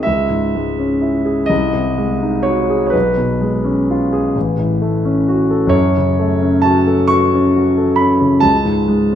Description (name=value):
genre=classical, romantic nocturne for solo piano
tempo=41-46 BPM (dotted quarters)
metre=12/8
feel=rubato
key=unclear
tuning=A4 = 439 Hz
part: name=warm grand piano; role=solo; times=0.0-9.2 s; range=A1 to C#6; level=-13 LUFS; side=equal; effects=none
room=wet recital hall reverb, RT60 1.6 s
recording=faint mains hum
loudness=-13 LUFS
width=side -9 dB against mid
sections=0.0-9.2 A section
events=none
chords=0.1 C#m; 1.5 G#7/B#; 2.9 C#7/B; 4.4 F#m/A; 5.7 F#m; 8.5 C#5